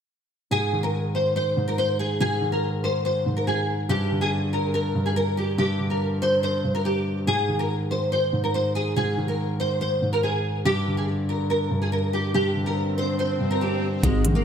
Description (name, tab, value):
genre	hip hop, drill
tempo	142 BPM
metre	4/4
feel	half-time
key	G phrygian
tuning	A4 = 438 Hz
part	nylon-string guitar	melody	0.5-14.4 s	Ab3 to C5	-24 LUFS	equal	ensemble chorus
part	dark baby grand piano	accompaniment	0.5-14.4 s	G2 to Eb3	-25 LUFS	equal	none
part	swell	sound effects	12.7-14.0 s	none	-31 LUFS	equal	none
part	warbly tape-like pad	sustained chords	14.3-14.4 s	Eb3 to Ab4	-30 LUFS	equal	none
part	growling 808-style bass	bass	14.0-14.4 s	Ab1 to Bb1	-22 LUFS	equal	none
part	drill drum kit	drums	14.0-14.3 s	hi-hat, kick drum	-23 LUFS	equal	none
room	moderate lush hall reverb, RT60 1.7 s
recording	bright 1980s-style digital production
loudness	-22 LUFS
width	side -8 dB against mid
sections	0.5-14.0 A section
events	swell 12.7-14.0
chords	0.5 Ab5; 3.9 G5; 7.3 Ab5; 10.7 G5